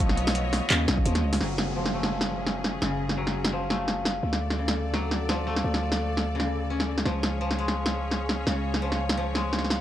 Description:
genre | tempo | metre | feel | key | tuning
half-time drum and bass | 170 BPM | 4/4 | swing 55% on 16ths, half-time | F# harmonic minor | A4 = 442 Hz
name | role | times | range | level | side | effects
bright symphonic string section | sustained chords | 0.0-9.8 s | B3 to D#5 | -36 LUFS | left 2 dB | sidechain pumping
koto | arpeggios | 0.0-9.8 s | C#3 to C#4 | -31 LUFS | left 2 dB | low-pass filter, tape echo
growling 808-style bass | bass | 0.0-9.8 s | F#1 to D#2 | -30 LUFS | equal | none
drum and bass drum kit | drums | 0.0-9.8 s | handclaps, hi-hat, snare drum | -27 LUFS | equal | none
electronic kick drum | drums | 0.0-1.0 s | none | -25 LUFS | equal | none
flickering grainy texture | texture | 0.0-1.4 s | E#4 | -45 LUFS | right 3 dB | none
downlifter | sound effects | 1.4-4.2 s | none | -37 LUFS | equal | none
room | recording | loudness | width
light reverb | dry, gritty hardware recording, cassette tape | -24 LUFS | side -12 dB against mid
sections
0.0-1.4 A section; 1.4-9.8 B section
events
drop 0.0-1.4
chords
0.0 B; 1.4 F#m; 4.2 D; 7.1 C#

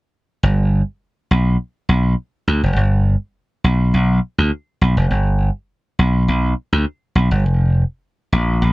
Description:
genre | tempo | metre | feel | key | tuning
funk | 103 BPM | 4/4 | straight | G mixolydian | A4 = 438 Hz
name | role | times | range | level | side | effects
slap bass | bass | 0.4-8.7 s | F1 to D2 | -14 LUFS | equal | none
room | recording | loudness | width
little or no reverb | none | -16 LUFS | side -20 dB against mid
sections
0.4-8.7 A section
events
none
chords
none

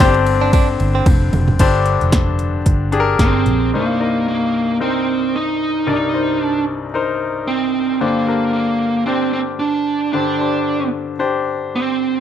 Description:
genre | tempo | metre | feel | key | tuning
piano-driven pop | 112 BPM | 4/4 | swing 56% on 16ths | C minor | A4 = 438 Hz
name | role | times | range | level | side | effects
smooth overdriven lead guitar | melody | 0.0-12.2 s | Bb3 to G5 | -18 LUFS | right 3 dB | slapback echo
bright concert grand piano | accompaniment | 0.0-12.2 s | C2 to Eb5 | -19 LUFS | left 6 dB | none
direct-recorded clean electric guitar | riff | 0.0-1.1 s | C4 to G4 | -22 LUFS | right 9 dB | none
vintage muted fingered electric bass | bass | 0.0-3.7 s | F1 to Bb1 | -18 LUFS | equal | none
deep house drum kit | drums | 0.0-3.6 s | crash cymbal, hi-hat, kick drum, ride cymbal, snare drum, toms | -16 LUFS | equal | overdrive
room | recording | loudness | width
little or no reverb | dry, close 1970s-style studio recording | -15 LUFS | side -10 dB against mid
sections
0.0-1.6 A section; 1.6-3.7 B section; 3.7-12.2 C section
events
drum fill 1.1-1.6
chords
0.0 Gsus4; 3.7 Cm7; 8.0 Gsus4

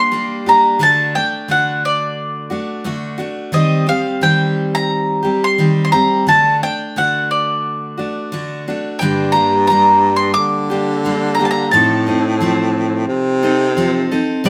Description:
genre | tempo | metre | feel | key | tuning
acoustic folk duo or small band | 88 BPM | 4/4 | straight | G minor | A4 = 441 Hz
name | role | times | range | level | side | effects
bowl-back mandolin | melody | 0.0-14.5 s | D5 to D6 | -17 LUFS | equal | none
picked steel-string acoustic guitar | accompaniment | 0.0-14.5 s | G2 to A4 | -21 LUFS | equal | none
warm baritone saxophone | bass | 9.0-14.5 s | G2 to D3 | -20 LUFS | equal | none
room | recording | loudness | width
moderate stone room reverb, RT60 0.9 s | band playing live in one room | -16 LUFS | mono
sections
0.0-14.5 A section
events
none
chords
0.0 Gm; 0.8 D; 3.5 Cm/Eb; 6.3 D; 9.0 Gm; 11.7 F7/A

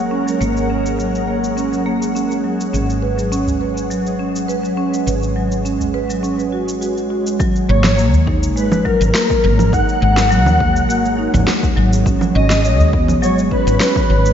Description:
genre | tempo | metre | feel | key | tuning
organic downtempo | 103 BPM | 4/4 | straight | G# minor | A4 = 440 Hz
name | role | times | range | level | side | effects
ethereal airy pad | sustained chords | 0.0-14.3 s | G#3 to F#5 | -24 LUFS | right 1 dB | ensemble chorus, built-in reverb, sidechain pumping
woody fretless electric bass | bass | 0.0-14.3 s | G#1 to D#2 | -18 LUFS | equal | tube saturation, analog chorus, sidechain pumping
marimba with medium mallets | arpeggios | 0.1-14.3 s | F#3 to C#5 | -19 LUFS | right 1 dB | low-pass filter, diffuse ambient delay
electronic cabasa, snare drum and congas | drums | 0.3-14.3 s | none | -22 LUFS | right 2 dB | studio reverb
udu | percussion | 3.5-12.9 s | none | -20 LUFS | equal | none
electronic kick drum | drums | 7.4-14.1 s | none | -20 LUFS | equal | studio reverb
breathy flute-like synth lead | melody | 7.7-14.3 s | A#4 to F#5 | -18 LUFS | left 1 dB | ensemble chorus, diffuse ambient delay
room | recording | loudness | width
moderate lush hall reverb, RT60 2.1 s | dreamy mix soaked in reverb, nothing above 7.7 kHz | -14 LUFS | side -9 dB against mid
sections
0.0-7.4 A section; 7.4-14.3 B section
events
filter sweep on marimba 0.0-7.4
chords
0.0 G#9sus4; 2.7 Bsus2/G#; 7.4 G#9sus4; 12.1 Bsus2/G#

